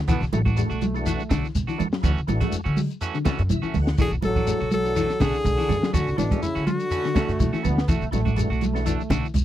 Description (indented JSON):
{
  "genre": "afrobeat",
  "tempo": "123 BPM",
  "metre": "4/4",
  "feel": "swing 53% on 16ths",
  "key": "B dorian",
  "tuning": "A4 = 439 Hz",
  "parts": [
    { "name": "bright trombone section", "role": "second line", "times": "0.1-1.4, 7.1-9.3 s", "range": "A3 to B3", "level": "-31 LUFS", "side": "right 6 dB", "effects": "none" },
    { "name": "semi-hollow electric guitar", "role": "arpeggios", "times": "0.1-9.3 s", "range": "C#3 to G#3", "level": "-30 LUFS", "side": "left 6 dB", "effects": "vibrato effect, tape echo" },
    { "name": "clean electric guitar", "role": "stabs", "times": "0.1-9.3 s", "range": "E3 to F#4", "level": "-32 LUFS", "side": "right 8 dB", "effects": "none" },
    { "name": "upright bass", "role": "bass", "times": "0.1-9.4 s", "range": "A1 to D3", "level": "-25 LUFS", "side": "equal", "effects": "none" },
    { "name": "compact cocktail drum kit", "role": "drums", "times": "0.1-9.4 s", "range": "hi-hat, kick drum, snare drum", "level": "-25 LUFS", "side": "equal", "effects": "none" },
    { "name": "congas", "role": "percussion", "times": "0.1-9.4 s", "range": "none", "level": "-29 LUFS", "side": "right 7 dB", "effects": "none" },
    { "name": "shekere", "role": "percussion", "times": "0.1-9.4 s", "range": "none", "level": "-33 LUFS", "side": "left 2 dB", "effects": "none" },
    { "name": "percussive tonewheel organ", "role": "accompaniment", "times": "0.3-9.0 s", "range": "E3 to F#5", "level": "-32 LUFS", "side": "equal", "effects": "overdrive, chorus vibrato, stopped rotary speaker" },
    { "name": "clear tenor saxophone", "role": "melody", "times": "4.0-7.6 s", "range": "D4 to A4", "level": "-26 LUFS", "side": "left 2 dB", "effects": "none" },
    { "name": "breathy trombone", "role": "second line", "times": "4.0-7.6 s", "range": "B2 to F#3", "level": "-32 LUFS", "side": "right 6 dB", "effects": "none" }
  ],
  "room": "little or no reverb",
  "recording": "dry, close 1970s-style studio recording",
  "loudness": "-21 LUFS",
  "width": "side -12 dB against mid",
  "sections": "0.0-9.4 A section",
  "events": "tonewheel organ fill 3.3-4.0",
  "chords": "0.1 Bm7; 2.0 Dmaj9; 4.0 Bm7; 5.9 Dmaj9; 7.9 Bm7",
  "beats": "| 0.09 0.57 1.06 1.55 | 2.04 2.53 3.02 3.50 | 3.99 4.48 4.96 5.45 | 5.94 6.42 6.91 7.40 | 7.88 8.37 8.86 9.34"
}